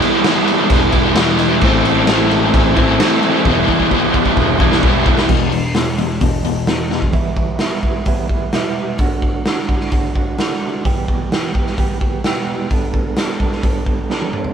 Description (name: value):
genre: quiet-loud alternative rock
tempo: 130 BPM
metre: 4/4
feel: straight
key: E minor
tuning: A4 = 441 Hz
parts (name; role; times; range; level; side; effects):
- overdriven electric guitar; riff; 0.0-5.3 s; A2 to E4; -16 LUFS; right 9 dB; none
- raw garage guitar; riff; 0.0-7.1 s; E2 to E4; -16 LUFS; left 7 dB; overdrive, harmonic tremolo
- raw garage drum kit; drums; 0.0-14.5 s; crash cymbal, hi-hat, kick drum, snare drum, toms; -17 LUFS; equal; none
- picked electric bass; bass; 0.7-7.1 s; E1 to A1; -21 LUFS; equal; none
- mellow electric guitar; arpeggios; 5.3-14.5 s; E2 to A4; -23 LUFS; right 7 dB; tremolo
room: light reverb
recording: band playing live in one room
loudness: -13 LUFS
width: side -7 dB against mid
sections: 0.0-5.3 A section; 5.3-7.1 B section; 7.1-14.5 C section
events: drum fill 3.5-5.3, 6.9, 14.1-14.5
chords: 0.0 Em; 1.6 Am; 3.5 Em; 5.3 E5; 7.1 Em; 9.0 D; 10.9 Em; 12.7 Gadd9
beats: 0.25 0.70 1.16 | 1.62 2.08 2.54 3.00 | 3.46 3.91 4.37 4.83 | 5.29 5.75 6.21 6.68 | 7.14 7.60 8.07 8.53 | 8.99 9.46 9.92 10.39 | 10.85 11.31 11.78 12.24 | 12.71 13.17 13.63 14.10